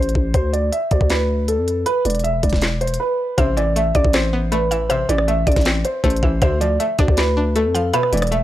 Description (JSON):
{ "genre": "hip hop, trap", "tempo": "158 BPM", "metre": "4/4", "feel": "half-time", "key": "A minor", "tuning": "A4 = 441 Hz", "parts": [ { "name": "dark concert grand piano", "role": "melody", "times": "0.0-8.4 s", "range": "A4 to E5", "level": "-20 LUFS", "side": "right 2 dB", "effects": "tape echo" }, { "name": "growling 808-style bass", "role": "bass", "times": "0.0-8.4 s", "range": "E1 to F2", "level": "-20 LUFS", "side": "left 1 dB", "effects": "none" }, { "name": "trap drum kit", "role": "drums", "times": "0.0-8.4 s", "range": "handclaps, hi-hat, kick drum, rim click, snare drum", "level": "-20 LUFS", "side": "equal", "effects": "none" }, { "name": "mallet-like synth pluck", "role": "second line", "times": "3.4-8.4 s", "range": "D5 to F5", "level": "-29 LUFS", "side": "equal", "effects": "chorus, tape echo" }, { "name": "string-like resonator pluck", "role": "accompaniment", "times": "3.4-8.4 s", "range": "B2 to D5", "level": "-25 LUFS", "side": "left 3 dB", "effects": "chorus" } ], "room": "little or no reverb", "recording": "dry, gritty hardware recording", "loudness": "-16 LUFS", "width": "side -13 dB against mid", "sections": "0.0-3.4 A section; 3.4-8.4 B section", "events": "none", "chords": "0.3 Dm; 1.9 E5; 3.4 Amadd9; 6.4 Dm" }